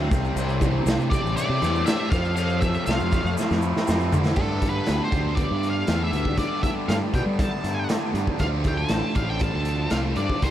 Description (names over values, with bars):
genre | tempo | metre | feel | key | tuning
psychedelic rock | 119 BPM | 4/4 | straight | unclear | A4 = 441 Hz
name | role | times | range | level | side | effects
percussive tonewheel organ | sustained chords | 0.0-10.5 s | F3 to C5 | -37 LUFS | right 3 dB | none
crunchy overdriven guitar | riff | 0.0-10.5 s | G2 to E4 | -28 LUFS | equal | phaser, dub echo
fuzz fingered electric bass | bass | 0.0-10.5 s | A1 to G3 | -26 LUFS | equal | overdrive
raw garage drum kit | drums | 0.1-10.5 s | crash cymbal, hi-hat, kick drum, snare drum, toms | -25 LUFS | equal | none
tube shaker | percussion | 0.1-4.3 s | none | -43 LUFS | left 7 dB | none
octave-fuzz lead guitar | melody | 1.1-10.5 s | A4 to A5 | -30 LUFS | equal | distortion, dub echo
room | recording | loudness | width
small room reverb | echo-heavy mix | -21 LUFS | side -11 dB against mid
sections
0.0-4.4 A section; 4.4-10.5 B section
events
drum fill 3.4-4.4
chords
0.1 Cadd9; 2.1 Fmaj7; 4.4 Gadd9; 8.4 Dm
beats
| 0.36 0.86 1.36 1.86 | 2.36 2.87 3.37 3.87 | 4.37 4.87 5.38 5.88 | 6.38 6.89 7.39 7.90 | 8.40 8.91 9.41 9.92 | 10.43